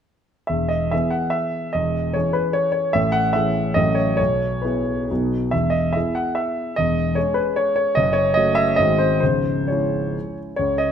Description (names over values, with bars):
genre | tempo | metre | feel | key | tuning
classical, romantic triple-time dance for piano with dotted rhythms | 124-164 BPM | 3/4 | rubato | E major | A4 = 443 Hz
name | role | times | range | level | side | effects
warm grand piano | solo | 0.5-10.9 s | C#1 to F#5 | -18 LUFS | equal | none
room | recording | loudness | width
moderate recital hall reverb, RT60 1.6 s | close, detailed microphones | -18 LUFS | side -8 dB against mid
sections
0.5-10.6 A section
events
none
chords
0.5 E; 1.7 C#m/E; 2.9 Amaj7; 3.8 F#m/A; 4.2 E/B; 5.1 B; 5.5 E; 6.8 C#m/E; 8.0 F#m6; 8.8 G#7; 9.2 C#m